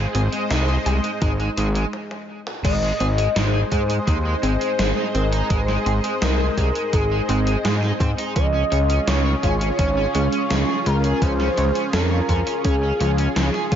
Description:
synthwave; 84 BPM; 4/4; straight; Ab major; A4 = 440 Hz
lush unison pad; sustained chords; 0.0-13.8 s; Ab3 to Eb5; -27 LUFS; equal; chorus, phaser, sidechain pumping
analog pluck; arpeggios; 0.0-13.8 s; F3 to Ab4; -29 LUFS; right 1 dB; chorus, tape echo
overdriven semi-hollow guitar; riff; 0.0-13.8 s; Ab3 to Db5; -30 LUFS; right 2 dB; wide subtle chorus, tape echo
fat analog bass; bass; 0.0-13.8 s; Ab1 to Ab2; -21 LUFS; equal
gated 80s digital drum machine; drums; 0.1-13.8 s; crash cymbal, hi-hat, snare drum, toms; -28 LUFS; equal; gated reverb, gated reverb snare, overdrive, high-pass filter on hats, high-pass filter on snare, high-pass filter on toms, high-pass filter on cymbals, high-pass filter on room
electronic kick drum; drums; 1.2-13.8 s; -22 LUFS; equal; overdrive
expressive portamento lead; melody; 2.6-13.7 s; Ab4 to Eb5; -25 LUFS; left 1 dB; analog chorus, tape echo
light reverb, digital ambience; nothing above 7.5 kHz; -18 LUFS; side -9 dB against mid
0.0-2.6 A section; 2.6-13.8 B section
drum fill 1.9-2.6; stop 1.9-2.6
0.0 Ab; 8.4 Db

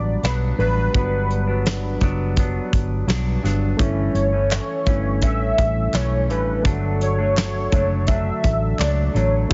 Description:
indie pop, bedroom pop; 84 BPM; 4/4; straight; G lydian; A4 = 440 Hz
warm velvety synth lead; melody; 0.0-9.5 s; B4 to E5; -26 LUFS; equal; analog chorus, delay
semi-hollow electric guitar; accompaniment; 0.0-9.5 s; G2 to D4; -29 LUFS; equal; subtle chorus, vibrato effect
soft electric-piano-like synth keys; accompaniment; 0.0-9.5 s; G3 to C#5; -33 LUFS; equal; chorus, cassette tape
vintage muted fingered electric bass; bass; 0.0-9.5 s; F#1 to C#2; -24 LUFS; equal
soft brush drum kit; drums; 0.2-9.5 s; hi-hat, kick drum, snare drum; -24 LUFS; equal
group handclap; percussion; 4.5-9.0 s; -36 LUFS; equal
little or no reverb; heavily compressed radio sound, nothing above 7.6 kHz; -20 LUFS; mono
0.0-9.5 A section
0.0 Gmaj7; 3.8 A/G; 6.7 Dmaj7

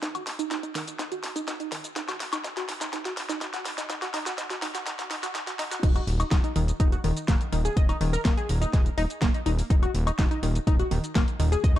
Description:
progressive house; 124 BPM; 4/4; straight; Eb minor; A4 = 440 Hz
tight sequenced synth; arpeggios; 0.0-11.8 s; Eb3 to Eb5; -31 LUFS; equal; chorus, sidechain pumping, dub echo
electronic kick drum; drums; 0.0-11.7 s; -23 LUFS; equal; overdrive, high-pass filter on kick, high-pass filter on room
pop drum kit; drums; 0.0-11.8 s; crash cymbal, hi-hat, shaker, snare drum, woodblock; -32 LUFS; left 1 dB; high-pass filter on hats, high-pass filter on perc, high-pass filter on snare, high-pass filter on cymbals
fat analog bass; bass; 5.8-11.8 s; Eb1; -26 LUFS; equal; sidechain pumping
little or no reverb; dark, warm production, high-pass filter; -24 LUFS; side -13 dB against mid
0.0-5.8 A section; 5.8-11.8 B section
build-up 0.0-5.8; drum fill 0.0-5.8; filter sweep on synth arpeggio sound 0.0-5.8; drop 5.8-11.8
0.0 Ebm; 5.8 N.C.

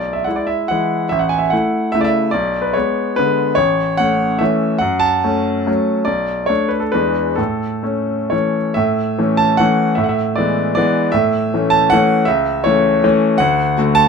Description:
classical, romantic triple-time dance for piano with dotted rhythms; 121-170 BPM; 3/4; rubato; A major; A4 = 439 Hz
bright grand piano; solo; 0.0-14.1 s; A1 to A5; -14 LUFS; equal
light reverb; close, detailed microphones; -14 LUFS; side -5 dB against mid
0.0-8.8 A section; 8.8-14.1 B section
0.0 E/B; 1.1 A; 2.3 G#dim/B; 3.6 A; 4.8 F#m; 6.1 Bm7; 6.9 E7; 7.4 A; 10.0 E7/A; 11.1 A; 12.3 A/C#; 13.4 D

